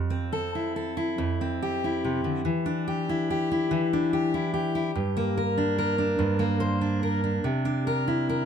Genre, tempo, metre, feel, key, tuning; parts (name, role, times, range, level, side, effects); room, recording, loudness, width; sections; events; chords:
folk, solo fingerstyle acoustic guitar; 48 BPM (dotted quarters); 6/8; rubato; F major; A4 = 442 Hz
fingerpicked steel-string acoustic guitar; solo; 0.0-8.5 s; F2 to C5; -24 LUFS; equal
light reverb; close, detailed microphones; -24 LUFS; side -8 dB against mid
0.0-8.5 A section
0.0 Fmaj7; 2.5 Em7; 4.9 Gm; 7.4 Cadd9